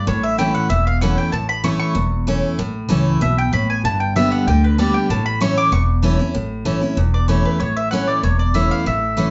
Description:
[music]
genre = bluegrass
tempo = 191 BPM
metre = 4/4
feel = straight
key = A major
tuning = A4 = 440 Hz
[part]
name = mandolin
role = melody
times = 0.0-9.3 s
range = B4 to D6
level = -24 LUFS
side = equal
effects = none
[part]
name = picked steel-string acoustic guitar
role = accompaniment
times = 0.0-9.3 s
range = E2 to G4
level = -22 LUFS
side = equal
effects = none
[part]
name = upright bass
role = bass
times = 0.1-9.3 s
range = E1 to D2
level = -23 LUFS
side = equal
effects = none
[sound]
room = wet studio reverb, RT60 0.5 s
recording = heard from further back in the room, nothing above 7.7 kHz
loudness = -18 LUFS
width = mono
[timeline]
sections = 0.0-6.3 A section; 6.3-9.3 B section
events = mandolin solo 0.0-6.3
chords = 0.1 A; 3.8 G; 5.1 A

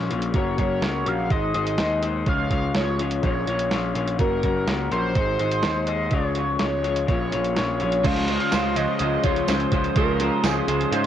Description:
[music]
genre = indie rock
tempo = 125 BPM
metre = 4/4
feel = straight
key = Db major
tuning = A4 = 444 Hz
[part]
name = electric guitar through a small old amp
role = riff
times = 0.0-11.1 s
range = Bb2 to Db5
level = -26 LUFS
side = left 7 dB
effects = cassette tape
[part]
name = fuzz picked electric bass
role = bass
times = 0.0-11.1 s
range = Gb1 to Ab2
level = -28 LUFS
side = right 2 dB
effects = overdrive
[part]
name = lo-fi sampler-style drum kit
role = drums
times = 0.1-11.1 s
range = crash cymbal, hi-hat, kick drum, snare drum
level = -26 LUFS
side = right 1 dB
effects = overdrive, cassette tape
[part]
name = overdriven synth lead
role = melody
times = 0.4-11.1 s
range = Ab4 to F5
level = -26 LUFS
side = right 1 dB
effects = distortion, chorus, phaser, cassette tape, tape echo
[part]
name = clean electric guitar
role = riff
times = 8.0-11.1 s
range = Db3 to C5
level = -26 LUFS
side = right 13 dB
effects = wide subtle chorus, cassette tape, tape echo
[part]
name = tambourine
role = percussion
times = 8.5-10.6 s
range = none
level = -39 LUFS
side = right 16 dB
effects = none
[sound]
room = light reverb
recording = home recording on cassette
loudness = -20 LUFS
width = side -10 dB against mid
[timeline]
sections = 0.0-8.0 A section; 8.0-11.1 B section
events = none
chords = 0.3 Gb; 1.3 Ab; 2.3 Db; 3.2 Bbm; 4.2 Gb; 5.2 Ab; 6.1 Db; 7.1 Bbm; 8.0 Dbmaj7

